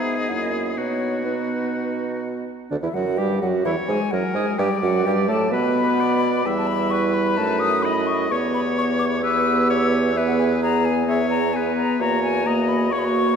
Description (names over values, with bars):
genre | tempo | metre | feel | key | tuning
quick classical-period movement for wind quintet | 129 BPM | 4/4 | straight | unclear | A4 = 440 Hz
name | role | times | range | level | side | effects
mellow hollow silver concert flute | melody | 0.0-13.4 s | B4 to E6 | -26 LUFS | left 5 dB | none
clear oboe | second line | 0.0-13.4 s | F#4 to E5 | -28 LUFS | left 3 dB | none
dark French horn | accompaniment | 0.0-13.4 s | D3 to B3 | -24 LUFS | left 1 dB | none
mellow clarinet | accompaniment | 0.0-13.4 s | D4 to B4 | -27 LUFS | right 6 dB | none
warm bassoon | bass | 0.0-13.4 s | D2 to B2 | -25 LUFS | right 3 dB | none
room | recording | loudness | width
wet concert hall reverb, RT60 2.5 s | faint mains hum | -19 LUFS | side -6 dB against mid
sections
0.0-2.7 A section; 2.7-13.4 B section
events
none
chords
0.3 F#7; 0.8 B; 2.7 Dadd11 (rootless); 3.7 A#dim/E; 4.6 Bm; 6.5 Em; 7.4 D#dim/F#; 8.3 Em; 10.2 E; 12.0 F#7/E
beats
0.30 | 0.78 1.26 1.74 2.23 | 2.71 3.18 3.65 4.12 | 4.59 5.06 5.53 5.99 | 6.46 6.92 7.38 7.85 | 8.31 8.77 9.23 9.69 | 10.15 10.61 11.07 11.53 | 11.99 12.46 12.92